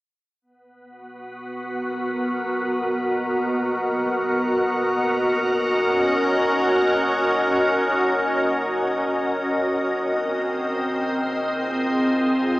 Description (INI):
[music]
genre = ambient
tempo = free time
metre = none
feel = none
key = B lydian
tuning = A4 = 439 Hz
[part]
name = soft additive organ-like pad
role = sustained chords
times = 1.2-12.6 s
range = B3 to F#5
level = -20 LUFS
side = equal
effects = ensemble chorus, built-in reverb
[sound]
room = wet plate reverb, RT60 2.7 s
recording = dreamy mix soaked in reverb, cassette tape, small speaker sound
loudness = -20 LUFS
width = side -18 dB against mid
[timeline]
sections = 0.4-12.6 A section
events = none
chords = 0.4 Bmaj7; 5.2 D#m7; 10.0 Fm7